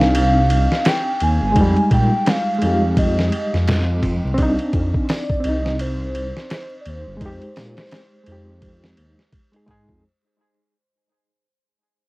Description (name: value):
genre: trip hop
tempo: 85 BPM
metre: 4/4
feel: swing 59% on 16ths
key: unclear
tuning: A4 = 441 Hz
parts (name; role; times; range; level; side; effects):
- pure breathy sine lead; melody; 0.0-9.7 s; C5 to Ab5; -24 LUFS; equal; analog chorus, cassette tape, dub echo
- reed electric piano; accompaniment; 0.0-10.1 s; G3 to Ab4; -22 LUFS; equal; overdrive, fast tremolo, harmonic tremolo
- dark detuned saw bass; bass; 0.0-10.0 s; G1 to Bb2; -20 LUFS; equal; none
- dusty soul sampler-style drum kit; drums; 0.0-10.0 s; hi-hat, kick drum, ride cymbal, snare drum; -22 LUFS; equal; vintage 12-bit sampler grit, small room ambience
room: little or no reverb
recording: home recording on cassette, vinyl crackle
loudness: -16 LUFS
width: side -22 dB against mid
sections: 0.0-10.0 A section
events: fade-out 0.0-10.0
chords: 0.0 Cmadd9; 1.6 Fm7; 4.4 Cmadd9; 7.2 Fm7